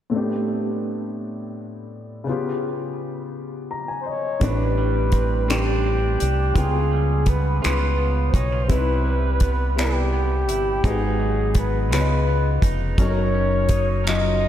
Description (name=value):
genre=slow six-eight R&B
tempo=56 BPM (dotted quarters)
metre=6/8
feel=straight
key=unclear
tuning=A4 = 440 Hz
part: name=warm baby grand piano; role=accompaniment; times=0.1-14.5 s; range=A2 to Bb5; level=-26 LUFS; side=left 3 dB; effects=analog chorus
part: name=mellow flugelhorn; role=melody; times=4.0-14.5 s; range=G4 to D#5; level=-25 LUFS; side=equal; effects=none
part: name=electric guitar at the edge of break-up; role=second line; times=4.4-14.5 s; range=G#2 to A#4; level=-30 LUFS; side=right 4 dB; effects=analog delay
part: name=deep dub fingered electric bass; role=bass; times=4.4-14.5 s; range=E#1 to C#2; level=-22 LUFS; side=equal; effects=none
part: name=damped 70s drum kit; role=drums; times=4.4-14.2 s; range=finger snaps, hi-hat, kick drum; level=-22 LUFS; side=equal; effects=none
room=wet lush hall reverb, RT60 2.5 s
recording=dreamy mix soaked in reverb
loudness=-19 LUFS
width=side -11 dB against mid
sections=0.1-4.4 A section; 4.4-14.5 B section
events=grand piano fill 3.3-4.4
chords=0.1 Am11; 2.3 C#7#11; 4.4 Am11; 6.6 C#7#11; 8.7 Cmaj7; 10.8 G#m7; 11.9 C#9; 13.0 F#6